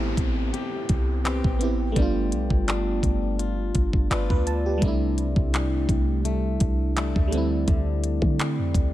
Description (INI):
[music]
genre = contemporary R&B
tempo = 84 BPM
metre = 4/4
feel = swing 54% on 16ths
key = unclear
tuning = A4 = 440 Hz
[part]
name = FM electric piano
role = accompaniment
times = 0.0-8.9 s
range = G3 to A5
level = -28 LUFS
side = right 2 dB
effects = chorus
[part]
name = fingerpicked plugged-in swing-style acoustic guitar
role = arpeggios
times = 0.0-8.9 s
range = C3 to C5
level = -32 LUFS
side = left 7 dB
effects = ping-pong delay
[part]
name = clean 808-style bass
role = bass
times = 0.0-8.9 s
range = G1 to D3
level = -26 LUFS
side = equal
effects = none
[part]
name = downlifter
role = sound effects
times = 0.0-4.8 s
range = none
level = -39 LUFS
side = equal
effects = none
[part]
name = smooth R&B drum kit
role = drums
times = 0.2-8.9 s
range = handclaps, hi-hat, kick drum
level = -25 LUFS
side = equal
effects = none
[sound]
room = little or no reverb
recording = none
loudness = -21 LUFS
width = side -14 dB against mid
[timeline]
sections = 0.0-8.9 A section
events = FM electric piano fill 3.7-4.8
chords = 0.0 Am9; 2.0 G7; 4.8 C6; 7.3 D9sus4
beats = 0.53 1.25 | 1.96 2.68 3.39 4.11 | 4.82 5.53 6.25 6.96 | 7.68 8.39